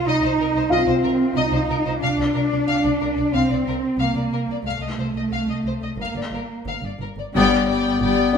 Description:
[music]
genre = cinematic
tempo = 91 BPM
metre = 4/4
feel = straight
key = C minor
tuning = A4 = 440 Hz
[part]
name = rich studio double bass section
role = bass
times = 0.0-8.4 s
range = G1 to C2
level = -27 LUFS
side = right 2 dB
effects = none
[part]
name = warm studio cello section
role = bass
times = 0.0-8.4 s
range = G2 to Eb4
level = -22 LUFS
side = right 2 dB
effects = none
[part]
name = warm studio violin section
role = melody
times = 0.1-8.4 s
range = Bb4 to G5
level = -27 LUFS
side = left 6 dB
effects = none
[part]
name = felt-muted upright piano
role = texture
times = 0.7-8.4 s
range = D4 to F5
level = -25 LUFS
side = left 3 dB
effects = none
[part]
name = rich studio viola section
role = accompaniment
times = 7.3-8.4 s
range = G3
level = -24 LUFS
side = equal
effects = none
[part]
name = rich studio violin section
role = second line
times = 7.4-8.4 s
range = D5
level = -22 LUFS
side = left 6 dB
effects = none
[part]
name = warm clarinet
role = second line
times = 7.4-8.4 s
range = B3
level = -19 LUFS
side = left 4 dB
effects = none
[sound]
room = wet recital hall reverb, RT60 1.4 s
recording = minimal, uncompressed stereo recording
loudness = -19 LUFS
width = side -7 dB against mid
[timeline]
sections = 0.0-7.4 A section; 7.4-8.4 B section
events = band accent 7.4-8.0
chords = 0.0 Cm; 2.0 C9sus4; 4.7 F/C; 6.0 Gm7; 7.4 G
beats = 0.05 0.70 1.35 | 2.01 2.67 3.33 3.99 | 4.65 5.32 5.99 6.68 | 7.35 8.02

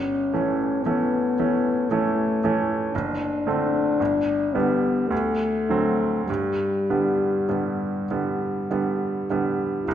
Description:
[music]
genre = classical, romantic duo for French horn and grand piano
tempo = 49-58 BPM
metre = 3/4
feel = rubato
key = G major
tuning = A4 = 442 Hz
[part]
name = dark French horn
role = melody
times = 0.0-9.9 s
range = G3 to E4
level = -24 LUFS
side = left 3 dB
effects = none
[part]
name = bright baby grand piano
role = accompaniment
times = 0.0-9.9 s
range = F#1 to C#4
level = -24 LUFS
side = right 3 dB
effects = none
[sound]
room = wet recital hall reverb, RT60 1.4 s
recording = none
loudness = -21 LUFS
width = side -10 dB against mid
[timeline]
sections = 0.0-9.9 A section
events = none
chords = 0.0 A7/G; 2.9 D7/F#; 4.0 G; 5.1 D7; 6.3 G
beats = 0.84 1.89 | 2.93 4.00 5.11 | 6.28 7.48 8.68 | 9.86

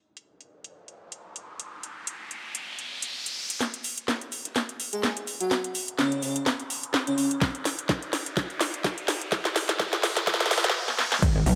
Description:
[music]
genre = bass house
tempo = 126 BPM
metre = 4/4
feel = swing 56% on 16ths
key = unclear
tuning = A4 = 440 Hz
[part]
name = riser and impact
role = sound effects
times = 0.9-11.6 s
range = none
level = -39 LUFS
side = equal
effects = none
[part]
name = garage drum kit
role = drums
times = 0.2-11.6 s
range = crash cymbal, hi-hat, snare drum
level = -29 LUFS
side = equal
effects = studio reverb
[part]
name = big rock drum kit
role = drums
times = 3.6-11.6 s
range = hi-hat, shaker, snare drum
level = -44 LUFS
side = equal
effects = none
[part]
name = airy dreamy lead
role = melody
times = 4.9-7.3 s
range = C#4 to G#4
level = -31 LUFS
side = equal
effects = chorus, digital delay
[part]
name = electronic kick drum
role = drums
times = 7.4-11.3 s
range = none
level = -29 LUFS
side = equal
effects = studio reverb
[part]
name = metallic wobble bass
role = bass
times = 11.2-11.6 s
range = G#1 to B1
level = -24 LUFS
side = equal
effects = distortion, chorus, sidechain pumping
[sound]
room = moderate plate reverb, RT60 1.6 s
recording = high-pass filter, low-pass filter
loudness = -28 LUFS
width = mono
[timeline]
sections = 0.0-3.6 A section; 3.6-11.2 B section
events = riser 0.9-3.6, 3.6-11.2; build-up 3.6-11.2; drum fill 3.6-10.7, 10.9-11.2; break 10.7-11.2; impact 11.2-11.6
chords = none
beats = 0.27 0.75 1.23 | 1.70 2.18 2.65 3.13 | 3.61 4.08 4.56 5.03 | 5.51 5.99 6.46 6.94 | 7.42 7.89 8.37 8.84 | 9.32 9.80 10.27 10.75 | 11.22

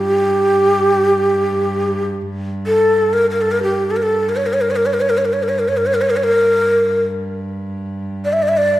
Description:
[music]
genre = Arabic maqam ensemble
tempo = free time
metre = none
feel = none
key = unclear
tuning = A4 = 440 Hz
[part]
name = breathy mellow ney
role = melody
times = 0.0-8.8 s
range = G4 to E5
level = -14 LUFS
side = equal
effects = none
[part]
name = rich cello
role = drone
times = 0.0-8.8 s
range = G2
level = -25 LUFS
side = right 1 dB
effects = none
[sound]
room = wet recital hall reverb, RT60 1.6 s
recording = none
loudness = -14 LUFS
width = side -14 dB against mid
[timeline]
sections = 0.0-8.8 A section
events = none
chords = none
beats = free time

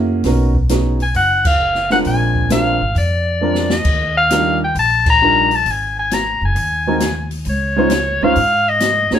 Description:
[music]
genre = jazz, small-group swing and bop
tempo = 133 BPM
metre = 4/4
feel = swing 67% on 8ths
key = Bb minor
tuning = A4 = 440 Hz
[part]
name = warm grand piano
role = accompaniment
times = 0.0-9.2 s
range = G3 to C5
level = -18 LUFS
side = right 2 dB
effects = none
[part]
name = upright bass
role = bass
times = 0.0-9.1 s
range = F#1 to Ab2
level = -20 LUFS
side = equal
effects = none
[part]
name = open jazz drum kit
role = drums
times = 0.2-9.2 s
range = crash cymbal, hi-hat, kick drum, snare drum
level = -22 LUFS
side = left 1 dB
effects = none
[part]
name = breathy soprano saxophone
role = melody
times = 1.0-9.2 s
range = Db5 to Bb5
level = -15 LUFS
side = left 2 dB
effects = none
[sound]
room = moderate studio reverb, RT60 0.7 s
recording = band playing live in one room, lossy compression artefacts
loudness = -13 LUFS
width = side -9 dB against mid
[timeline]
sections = 0.0-9.2 A section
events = band accent 1.4, 5.0; drum fill 3.4-3.9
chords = 0.3 Bmaj7; 2.1 Bb7; 3.9 Ebmaj7; 5.7 Ab7(no3); 7.5 Dbmaj9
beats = | 0.25 0.70 1.15 1.60 | 2.06 2.51 2.96 3.41 | 3.86 4.31 4.76 5.21 | 5.66 6.11 6.56 7.01 | 7.46 7.92 8.37 8.82

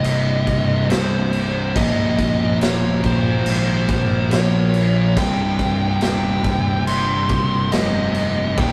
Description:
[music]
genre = stoner and doom metal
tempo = 70 BPM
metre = 4/4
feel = straight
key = C phrygian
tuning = A4 = 440 Hz
[part]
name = fuzz lead guitar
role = melody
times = 0.0-8.7 s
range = C5 to C6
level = -26 LUFS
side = equal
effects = distortion, tape echo
[part]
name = overtone-sweeping drone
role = sustained chords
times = 0.5-8.7 s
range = C3 to Bb4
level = -37 LUFS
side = equal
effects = none
[part]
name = thick fuzz guitar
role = riff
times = 0.0-8.7 s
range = C2 to Bb3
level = -26 LUFS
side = equal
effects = distortion
[part]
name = thick fuzz guitar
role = riff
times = 0.0-8.7 s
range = C2 to Bb3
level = -24 LUFS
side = equal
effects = distortion
[part]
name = fuzz fingered electric bass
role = bass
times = 0.0-8.7 s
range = C1 to Bb1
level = -28 LUFS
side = equal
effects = overdrive
[part]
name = raw garage drum kit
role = drums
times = 0.0-8.7 s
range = crash cymbal, kick drum, snare drum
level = -25 LUFS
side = equal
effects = none
[sound]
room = moderate studio reverb, RT60 0.5 s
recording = rough rehearsal-room recording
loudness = -19 LUFS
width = mono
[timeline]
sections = 0.0-8.7 A section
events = none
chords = 0.0 Cm; 1.8 Bbm/Db; 5.2 Cm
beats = 0.05 0.90 | 1.76 2.61 3.46 4.32 | 5.17 6.02 6.87 7.72 | 8.57

